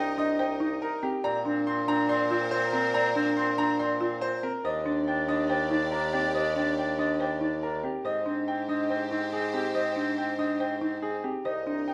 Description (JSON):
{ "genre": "classical, minimalist pattern music", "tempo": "141 BPM", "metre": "4/4", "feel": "straight", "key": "Ab lydian", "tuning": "A4 = 440 Hz", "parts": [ { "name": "clear concert grand piano", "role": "melody", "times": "0.0-11.9 s", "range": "G4 to C6", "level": "-34 LUFS", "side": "equal", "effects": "none" }, { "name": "warm oboe", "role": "second line", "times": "0.0-11.9 s", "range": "C4 to Eb4", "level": "-35 LUFS", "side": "equal", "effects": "none" }, { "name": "clear symphonic violin section", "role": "sustained chords", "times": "0.0-11.9 s", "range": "G4 to Eb5", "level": "-42 LUFS", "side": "equal", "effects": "none" }, { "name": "folk marimba with medium hard mallets", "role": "arpeggios", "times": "0.0-11.9 s", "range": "C4 to D5", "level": "-33 LUFS", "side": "equal", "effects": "none" }, { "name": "warm bassoon", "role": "bass", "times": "0.0-11.9 s", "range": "C2 to Bb2", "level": "-35 LUFS", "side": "equal", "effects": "none" } ], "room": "wet recital hall reverb, RT60 1.4 s", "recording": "none", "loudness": "-28 LUFS", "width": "mono", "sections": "0.0-11.9 A section", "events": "none", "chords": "0.0 Cm7; 1.2 Bbsus2; 4.6 Ebmaj7; 8.0 Abmaj7" }